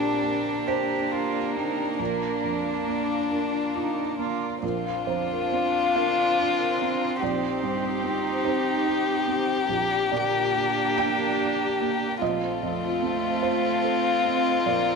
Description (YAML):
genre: neoclassical piano and strings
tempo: 44-50 BPM (dotted quarters)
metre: 6/8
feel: rubato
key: Bb major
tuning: A4 = 440 Hz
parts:
  - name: warm violin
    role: melody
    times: 0.0-15.0 s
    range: D4 to G4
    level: -26 LUFS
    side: left 6 dB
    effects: none
  - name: rich cello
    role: second line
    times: 0.0-15.0 s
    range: F3 to G4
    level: -33 LUFS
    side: right 9 dB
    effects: none
  - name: felt-muted upright piano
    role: accompaniment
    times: 0.0-15.0 s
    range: Bb1 to G5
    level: -30 LUFS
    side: right 10 dB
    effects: none
  - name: warm viola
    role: accompaniment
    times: 0.0-15.0 s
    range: Bb3 to Eb4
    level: -32 LUFS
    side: right 12 dB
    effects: none
  - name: dark chamber string section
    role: sustained chords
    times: 0.0-15.0 s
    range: C4 to D5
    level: -34 LUFS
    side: left 1 dB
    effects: none
  - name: marimba with soft mallets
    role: arpeggios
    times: 0.0-15.0 s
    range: C4 to Bb5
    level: -34 LUFS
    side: left 11 dB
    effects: tape echo
room: moderate echo chamber reverb, RT60 1.8 s, studio reverb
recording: 1960s-style stereo with parts hard left and right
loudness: -23 LUFS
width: side -4 dB against mid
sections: 0.0-4.6 A section; 4.6-15.0 B section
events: none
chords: 0.0 Gm/Bb; 2.0 Bb; 4.6 Bbadd9; 7.2 Cmadd9/Bb; 9.7 Gm/Bb; 12.2 F7/Bb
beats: 0.68 | 1.99 3.31 | 4.62 5.95 | 7.21 8.44 | 9.68 10.97 | 12.21 13.43 | 14.65